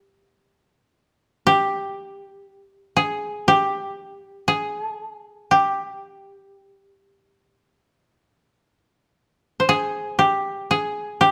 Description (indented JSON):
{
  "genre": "japanese traditional, Japanese chamber music",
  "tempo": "55-61 BPM",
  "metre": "4/4",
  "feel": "rubato",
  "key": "unclear",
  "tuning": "A4 = 441 Hz",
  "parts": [
    { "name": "koto", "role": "solo", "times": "0.0-11.3 s", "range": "G4 to C5", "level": "-21 LUFS", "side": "equal", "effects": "none" }
  ],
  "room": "light reverb",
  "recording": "close, detailed microphones",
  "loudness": "-22 LUFS",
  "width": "mono",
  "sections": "0.0-9.7 A section; 9.7-11.3 B section",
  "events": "none",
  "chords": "none"
}